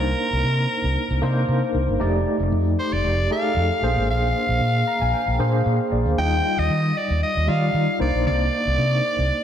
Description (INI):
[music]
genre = polished 1980s jazz-funk pop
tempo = 115 BPM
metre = 4/4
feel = swing 54% on 16ths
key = unclear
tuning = A4 = 440 Hz
[part]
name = raspy soprano saxophone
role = melody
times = 0.0-9.4 s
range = Bb4 to G5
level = -24 LUFS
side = equal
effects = diffuse ambient delay
[part]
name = barky tine electric piano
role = accompaniment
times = 0.0-9.4 s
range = G3 to Bb5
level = -24 LUFS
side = left 1 dB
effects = overdrive, fast tremolo, analog chorus
[part]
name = overdriven fingered electric bass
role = bass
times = 0.0-9.3 s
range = F1 to Eb3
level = -22 LUFS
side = equal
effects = none
[sound]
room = moderate lush hall reverb, RT60 2.0 s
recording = dreamy mix soaked in reverb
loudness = -19 LUFS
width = side -9 dB against mid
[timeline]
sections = 0.0-9.4 A section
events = tine electric piano fill 4.6-6.2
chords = 0.0 Cm9; 2.0 F13; 3.8 Bb9; 6.2 Ebmaj9; 8.0 Cm9